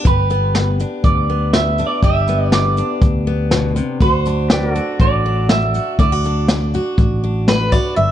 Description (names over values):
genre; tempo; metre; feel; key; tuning
honky-tonk and classic country; 121 BPM; 4/4; straight; unclear; A4 = 441 Hz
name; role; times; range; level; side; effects
picked steel-string acoustic guitar; accompaniment; 0.0-8.1 s; G2 to G4; -22 LUFS; left 3 dB; none
pedal steel guitar; sustained chords; 0.0-7.9 s; F#4 to D5; -26 LUFS; equal; none
electric guitar through a small old amp; second line; 0.1-7.4 s; B4 to E5; -20 LUFS; right 4 dB; tape echo
fingered electric bass; bass; 0.1-8.1 s; G1 to D2; -18 LUFS; equal; none
vintage brush drum kit; drums; 0.1-7.8 s; hi-hat, kick drum, snare drum; -17 LUFS; equal; none
picked swing-style acoustic guitar; melody; 7.5-8.1 s; B4 to E5; -17 LUFS; equal; none
room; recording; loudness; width
light reverb; dark, warm production, nothing above 10.5 kHz; -14 LUFS; side -11 dB against mid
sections
0.0-8.0 A section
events
clean electric guitar solo 0.0-8.0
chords
0.0 G; 4.0 D